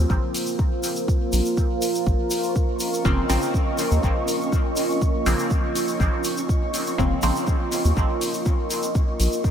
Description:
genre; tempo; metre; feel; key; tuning
dub techno; 122 BPM; 4/4; straight; Bb minor; A4 = 440 Hz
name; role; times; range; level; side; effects
deep dark ambient pad; sustained chords; 0.0-9.5 s; Bb3 to Eb5; -26 LUFS; right 2 dB; chorus, built-in reverb, sidechain pumping
round analog bass; bass; 0.0-9.3 s; F1 to Eb2; -22 LUFS; equal; sidechain pumping
electronic kick drum; drums; 0.1-9.5 s; none; -22 LUFS; equal; small room ambience
egg shaker; percussion; 0.1-9.5 s; none; -33 LUFS; left 1 dB; none
electronic hi-hat; drums; 0.3-9.3 s; none; -34 LUFS; left 2 dB; small room ambience
flickering grainy texture; texture; 2.5-9.5 s; Db4 to Db6; -32 LUFS; left 1 dB; built-in reverb, ensemble chorus, sidechain pumping
filtered dub chord stab; stabs; 3.0-7.5 s; Db3 to C4; -29 LUFS; equal; chorus, phaser, dub echo
room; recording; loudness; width
moderate cathedral reverb, RT60 6.0 s; dreamy mix soaked in reverb; -20 LUFS; side -8 dB against mid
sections
0.0-9.5 A section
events
none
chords
0.0 Bbmadd9

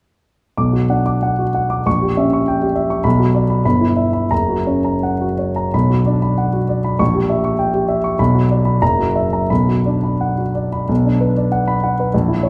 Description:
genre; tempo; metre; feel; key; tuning
classical, romantic character piece for solo piano; 82-103 BPM; 2/4; rubato; B minor; A4 = 439 Hz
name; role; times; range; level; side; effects
warm grand piano; solo; 0.6-12.5 s; F#1 to D6; -17 LUFS; equal; none
room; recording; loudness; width
wet recital hall reverb, RT60 1.7 s; none; -17 LUFS; mono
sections
0.6-10.9 A section; 10.9-12.5 A section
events
none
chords
0.6 Bm; 1.9 A#dim7; 3.0 Bm; 3.6 Em/G; 4.3 F#; 5.7 Bm; 7.0 A#dim7; 8.2 Bm; 8.8 F#7; 9.5 Bm

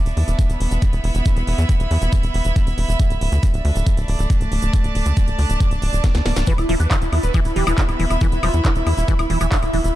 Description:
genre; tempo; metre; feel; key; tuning
psychedelic trance; 138 BPM; 4/4; straight; unclear; A4 = 440 Hz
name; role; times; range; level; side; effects
rich chamber string section; texture; 0.0-10.0 s; A3 to B5; -26 LUFS; right 2 dB; sidechain pumping
tight sequencer bass; bass; 0.1-9.9 s; D1 to E2; -19 LUFS; equal; tube saturation
drum and bass drum kit; drums; 0.1-9.9 s; handclaps, hi-hat, snare drum, woodblock; -28 LUFS; left 1 dB; none
egg shaker; percussion; 0.1-9.9 s; none; -39 LUFS; right 3 dB; none
electronic kick drum; drums; 0.4-9.6 s; none; -17 LUFS; equal; none
wide unison lead; melody; 6.5-9.9 s; E4 to B4; -24 LUFS; equal; phaser, sidechain pumping, dub echo
liquid acid bass; riff; 6.5-9.8 s; D3 to F3; -26 LUFS; moving between left 3 dB and right 5 dB; chorus, auto-pan, vintage 12-bit sampler grit, sidechain pumping, dub echo
room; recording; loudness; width
digital ambience; dark, warm production; -16 LUFS; side -15 dB against mid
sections
0.0-10.0 A section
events
drum fill 6.0-6.5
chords
0.0 E5; 3.0 D5; 6.5 E5

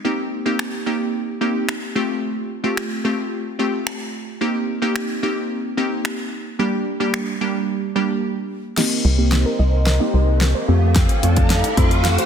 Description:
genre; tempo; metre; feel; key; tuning
dance-pop; 110 BPM; 4/4; straight; C minor; A4 = 440 Hz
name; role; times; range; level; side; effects
glassy wavetable pluck; accompaniment; 0.0-12.3 s; G3 to A4; -21 LUFS; right 1 dB; chorus, sidechain pumping, low-pass filter
pop drum kit; drums; 0.6-12.3 s; crash cymbal, finger snaps, hi-hat, kick drum, snare drum; -22 LUFS; equal; soft clipping on snare
breathy large flute ensemble; sustained chords; 8.8-12.3 s; C4 to F5; -26 LUFS; equal; sidechain pumping, low-pass filter
wide unison pluck; arpeggios; 8.8-12.3 s; A4 to F5; -30 LUFS; moving between left 5 dB and right 5 dB; auto-pan, sidechain pumping, low-pass filter, ping-pong delay
riser; sound effects; 9.8-12.3 s; none; -26 LUFS; equal; none
organ-like FM bass; bass; 9.0-12.2 s; C2 to F2; -17 LUFS; equal; sidechain pumping
room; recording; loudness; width
light reverb, digital ambience; dense, heavily limited modern master; -18 LUFS; side -8 dB against mid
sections
0.0-8.8 A section; 8.8-12.3 B section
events
break 8.2-8.8; build-up 8.8-12.3; drum fill 8.8-12.3; riser 9.8-12.3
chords
0.0 Cm7; 2.0 Fadd9; 4.4 Cm7; 6.6 Gm; 8.8 Cm7; 10.7 Fadd9

